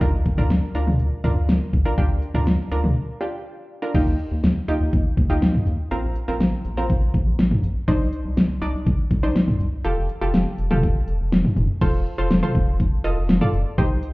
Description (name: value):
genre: synth-pop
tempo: 122 BPM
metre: 4/4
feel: straight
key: Bb major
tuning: A4 = 440 Hz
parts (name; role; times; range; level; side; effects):
- analog pluck; accompaniment; 0.0-14.0 s; C4 to Eb5; -27 LUFS; right 1 dB; chorus
- rubbery square bass; bass; 0.0-14.0 s; F1 to Eb2; -23 LUFS; equal; none
- pop drum kit; drums; 0.0-14.1 s; cowbell, crash cymbal, hi-hat, kick drum, snare drum, toms; -20 LUFS; equal; none
room: light reverb, digital ambience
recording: heard muffled through a wall, club ambience, EQ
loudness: -18 LUFS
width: side -22 dB against mid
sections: 0.0-3.9 A section; 3.9-11.8 B section; 11.8-14.1 C section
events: break 3.0-3.9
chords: 0.0 Bb/D; 3.9 Ebadd9; 5.9 Bbsus2; 7.9 Cmadd9; 9.8 Fadd9; 11.8 F